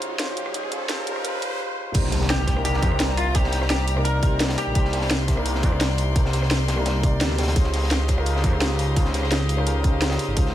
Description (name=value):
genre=liquid drum and bass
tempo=171 BPM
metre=4/4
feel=straight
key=unclear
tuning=A4 = 443 Hz
part: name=semi-hollow electric guitar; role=melody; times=0.0-5.1 s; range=F4 to C5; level=-28 LUFS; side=equal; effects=ensemble chorus, ping-pong delay
part: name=dark baby grand piano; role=accompaniment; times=0.0-10.5 s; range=C3 to D5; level=-28 LUFS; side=left 1 dB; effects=dub echo
part: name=bright chamber string section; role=sustained chords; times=0.0-10.5 s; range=G3 to C6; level=-32 LUFS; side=left 3 dB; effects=sidechain pumping
part: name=drum and bass drum kit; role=drums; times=0.0-10.4 s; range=crash cymbal, hi-hat, rim click, snare drum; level=-27 LUFS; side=equal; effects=studio reverb
part: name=riser and impact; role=sound effects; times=0.0-3.4 s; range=none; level=-31 LUFS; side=right 1 dB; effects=none
part: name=swelling detuned saw bass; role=bass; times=1.9-10.5 s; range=Ab1 to F2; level=-23 LUFS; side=equal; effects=none
part: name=crunchy breakbeat drum kit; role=drums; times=1.9-10.5 s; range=hi-hat, snare drum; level=-32 LUFS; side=equal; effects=high-pass filter on hats, studio reverb, high-pass filter on snare, high-pass filter on room
part: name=electronic kick drum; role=drums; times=1.9-10.4 s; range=none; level=-22 LUFS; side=equal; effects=studio reverb
room=small room reverb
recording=high-pass filter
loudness=-20 LUFS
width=side -12 dB against mid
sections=0.0-1.9 A section; 1.9-10.5 B section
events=build-up 0.0-1.9; riser 0.0-1.6; stop 1.6-1.9; drop 1.9-10.5; impact 1.9-3.4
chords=0.0 Dbmaj9#11; 1.9 Cm9; 7.6 Dbmaj9#11